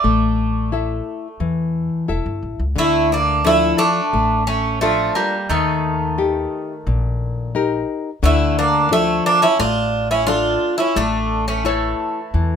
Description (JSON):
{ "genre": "greek folk, Greek bouzouki band", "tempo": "88 BPM", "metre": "4/4", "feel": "straight", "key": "D harmonic minor", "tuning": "A4 = 441 Hz", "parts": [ { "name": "Greek bouzouki", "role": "melody", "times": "0.0-12.6 s", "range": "A3 to D5", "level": "-19 LUFS", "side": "right 2 dB", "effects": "none" }, { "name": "Greek bouzouki", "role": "second line", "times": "0.0-12.6 s", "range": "Eb3 to D4", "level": "-24 LUFS", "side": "right 2 dB", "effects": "none" }, { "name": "nylon-string guitar", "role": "accompaniment", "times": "0.0-12.6 s", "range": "Bb2 to E5", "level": "-22 LUFS", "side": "left 6 dB", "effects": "none" }, { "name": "upright bass", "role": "bass", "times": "0.0-12.6 s", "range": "E1 to E2", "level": "-23 LUFS", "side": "equal", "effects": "none" } ], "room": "moderate small room reverb, RT60 0.6 s", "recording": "minimal, uncompressed stereo recording", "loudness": "-16 LUFS", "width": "side -7 dB against mid", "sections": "0.0-2.8 A section; 2.8-12.6 B section", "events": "none", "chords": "0.0 A5; 2.8 Dm; 5.5 Eb; 8.2 Dm; 11.0 A" }